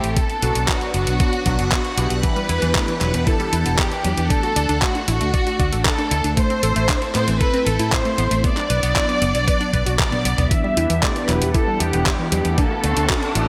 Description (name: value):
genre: italo disco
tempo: 116 BPM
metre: 4/4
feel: straight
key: unclear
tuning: A4 = 440 Hz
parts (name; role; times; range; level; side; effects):
- rich symphonic violin section; melody; 0.0-13.5 s; F#4 to E5; -25 LUFS; equal; low-pass filter
- phased string machine; sustained chords; 0.0-13.5 s; E3 to F#5; -30 LUFS; equal; ensemble chorus, phaser
- chorused polysynth; stabs; 0.0-2.5, 10.8-13.5 s; F#3 to A4; -30 LUFS; equal; none
- fingered electric bass with an envelope filter; bass; 0.0-13.5 s; E1 to A2; -24 LUFS; equal; none
- detuned 8-bit digital drum machine; drums; 0.0-13.5 s; congas, handclaps, hi-hat, toms; -26 LUFS; equal; high-pass filter on hats, high-pass filter on snare, high-pass filter on toms, high-pass filter on perc, high-pass filter on room, gated reverb
- electronic kick drum; drums; 0.2-13.2 s; none; -24 LUFS; equal; none
- analog pluck; arpeggios; 2.2-13.5 s; E2 to D5; -29 LUFS; equal; chorus, cassette tape, delay
- riser; sound effects; 12.2-13.5 s; none; -32 LUFS; equal; none
room: light reverb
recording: none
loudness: -19 LUFS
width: mono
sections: 0.0-10.5 A section; 10.5-13.5 B section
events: drum fill 10.0-10.5; filter sweep on string machine 10.5-13.5; riser 12.2-13.5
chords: 0.2 Bm; 2.2 Em7; 4.3 D; 6.4 Am; 8.4 Bm; 10.5 Em7; 12.6 D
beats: | 0.17 0.68 1.20 1.72 | 2.23 2.75 3.27 3.79 | 4.30 4.82 5.34 5.86 | 6.37 6.89 7.41 7.92 | 8.44 8.96 9.48 9.99 | 10.51 11.03 11.54 12.06 | 12.58 13.10